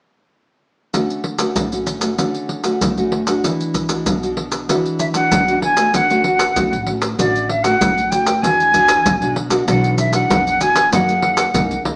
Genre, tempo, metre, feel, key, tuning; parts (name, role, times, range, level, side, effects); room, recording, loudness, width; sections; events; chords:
samba and choro; 96 BPM; 4/4; straight; D major; A4 = 440 Hz
nylon-string guitar; accompaniment; 0.9-12.0 s; A2 to G#4; -23 LUFS; equal
maracas, surdo and pandeiro; percussion; 0.9-12.0 s; -23 LUFS; equal
silver concert flute; melody; 5.0-11.8 s; D5 to G#5; -18 LUFS; equal
upright bass; bass; 5.9-12.0 s; A1 to F#2; -27 LUFS; equal
wet studio reverb, RT60 0.7 s; band playing live in one room, small speaker sound; -17 LUFS; mono
0.9-5.9 A section; 5.9-12.0 B section
0.9 Dmaj7; 3.4 E9; 5.9 Dmaj7; 8.4 E9; 10.9 F#69